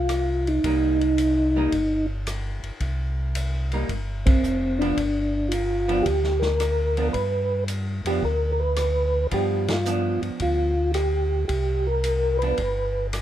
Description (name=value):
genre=soul jazz organ trio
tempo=111 BPM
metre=4/4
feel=swing 69% on 8ths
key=C harmonic minor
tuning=A4 = 440 Hz
part: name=percussive tonewheel organ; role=melody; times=0.0-13.1 s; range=C4 to B4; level=-23 LUFS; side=equal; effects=slow rotary speaker, chorus vibrato
part: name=mellow tonewheel organ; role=bass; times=0.0-13.2 s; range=F1 to G2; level=-26 LUFS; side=equal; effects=slow rotary speaker
part: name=vintage drum kit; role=drums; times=0.1-13.2 s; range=hi-hat, kick drum, ride cymbal, rim click, snare drum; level=-30 LUFS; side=equal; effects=none
part: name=archtop guitar, miked and amplified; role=accompaniment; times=0.7-12.6 s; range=F3 to Eb4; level=-30 LUFS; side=right 4 dB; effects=none
room=light reverb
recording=minimal, uncompressed stereo recording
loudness=-21 LUFS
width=side -11 dB against mid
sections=0.0-13.2 A section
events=band accent 4.2, 9.6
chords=0.0 F7(no3); 0.6 Cm7; 5.0 G7; 11.5 C9sus4; 12.6 G